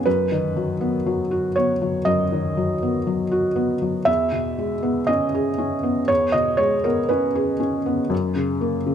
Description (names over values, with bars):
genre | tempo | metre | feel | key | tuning
neoclassical minimalist piano | 60 BPM | 4/4 | rubato | unclear | A4 = 438 Hz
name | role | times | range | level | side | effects
felt-muted upright piano | solo | 0.0-8.9 s | E2 to E5 | -19 LUFS | equal | none
room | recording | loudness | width
light reverb | close, detailed microphones | -19 LUFS | side -8 dB against mid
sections
0.0-8.9 A section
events
none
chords
0.1 B/F#; 4.1 E6; 8.1 F#